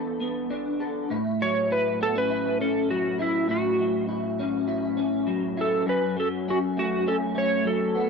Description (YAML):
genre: indie pop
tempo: 101 BPM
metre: 4/4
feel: straight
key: A major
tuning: A4 = 440 Hz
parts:
  - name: electric guitar through a small old amp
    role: accompaniment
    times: 0.0-8.1 s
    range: F#2 to A4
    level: -26 LUFS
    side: left 1 dB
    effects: ensemble chorus, warbly pitch drift
  - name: clean lap steel guitar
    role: melody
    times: 1.4-8.1 s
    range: E4 to C#5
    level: -26 LUFS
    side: right 1 dB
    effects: analog chorus, plate reverb, analog delay
room: moderate studio reverb, RT60 0.5 s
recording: dry, gritty hardware recording, transformer saturation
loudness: -23 LUFS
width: side -5 dB against mid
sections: 0.0-1.1 A section; 1.1-8.1 B section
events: electric slide guitar solo 1.1-8.1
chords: 0.0 E7sus4; 1.1 A6; 5.9 F#m